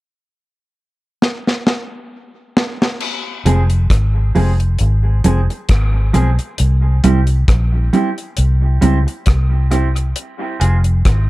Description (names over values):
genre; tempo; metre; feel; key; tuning
dub reggae; 67 BPM; 4/4; swing 56% on 16ths; F harmonic minor; A4 = 439 Hz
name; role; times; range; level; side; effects
deep reggae drum kit; drums; 1.2-11.3 s; crash cymbal, hi-hat, kick drum, rim click, snare drum; -17 LUFS; equal; none
mellow electric guitar; accompaniment; 3.5-10.8 s; F3 to Ab4; -18 LUFS; right 3 dB; harmonic tremolo, high-pass filter, dub echo
vintage muted fingered electric bass; bass; 3.5-11.3 s; F1 to Db2; -13 LUFS; equal; none
room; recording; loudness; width
small room ambience; none; -13 LUFS; side -19 dB against mid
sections
0.0-3.0 A section; 3.0-11.3 B section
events
drum fill 1.2-3.0; filter sweep on clean electric guitar 6.6-11.3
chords
0.0 N.C.; 3.0 Fm; 6.6 C; 10.2 Fm